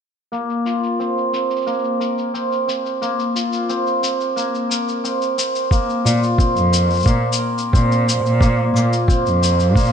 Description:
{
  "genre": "folktronica",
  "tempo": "89 BPM",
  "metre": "4/4",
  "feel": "straight",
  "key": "unclear",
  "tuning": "A4 = 441 Hz",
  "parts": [
    { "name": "cimbalom", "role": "arpeggios", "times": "0.3-9.9 s", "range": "Bb3 to Bb4", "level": "-19 LUFS", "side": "equal", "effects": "low-pass filter, ping-pong delay" },
    { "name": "cabasa", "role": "drums", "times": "0.3-9.9 s", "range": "none", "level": "-27 LUFS", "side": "left 5 dB", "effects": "low-pass filter on perc, low-pass filter on room" },
    { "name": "electronic kick drum", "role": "drums", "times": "5.7-9.9 s", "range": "none", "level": "-16 LUFS", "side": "equal", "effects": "none" },
    { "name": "warm cello", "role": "bass", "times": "6.0-9.9 s", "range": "F2 to Bb2", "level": "-17 LUFS", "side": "equal", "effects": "none" }
  ],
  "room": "moderate plate reverb, RT60 2.7 s",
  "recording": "dreamy mix soaked in reverb",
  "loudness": "-16 LUFS",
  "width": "side -8 dB against mid",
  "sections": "0.3-9.9 A section",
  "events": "filter sweep on hammered dulcimer 0.3-9.9",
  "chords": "0.3 Bbsus2"
}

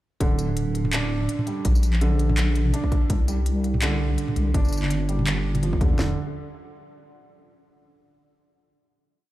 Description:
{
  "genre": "half-time drum and bass",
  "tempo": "166 BPM",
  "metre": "4/4",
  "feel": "swing 56% on 16ths, half-time",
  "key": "unclear",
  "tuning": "A4 = 440 Hz",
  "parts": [
    { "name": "felt-muted upright piano", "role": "arpeggios", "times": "0.2-6.2 s", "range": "D3 to D4", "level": "-28 LUFS", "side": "right 3 dB", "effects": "ping-pong delay" },
    { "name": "deep soft wobble bass", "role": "bass", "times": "0.2-6.2 s", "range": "D1 to E2", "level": "-23 LUFS", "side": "equal", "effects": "chorus" },
    { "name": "industrial drum kit", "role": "drums", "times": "0.2-5.9 s", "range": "handclaps, hi-hat, tambourine, toms", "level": "-29 LUFS", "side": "equal", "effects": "none" },
    { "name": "trap drum kit", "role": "drums", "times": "0.2-6.1 s", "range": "handclaps, kick drum, snare drum, toms", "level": "-22 LUFS", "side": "equal", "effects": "none" }
  ],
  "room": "little or no reverb",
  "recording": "played on a big sound system in a bare room, large studio reverb",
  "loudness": "-20 LUFS",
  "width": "side -15 dB against mid",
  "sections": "0.2-6.0 drop; 6.0-7.4 final chord",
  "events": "drop 0.2-6.0",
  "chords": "0.2 Dsus4; 1.7 Bb; 3.1 Csus2; 4.5 G5; 6.0 N.C."
}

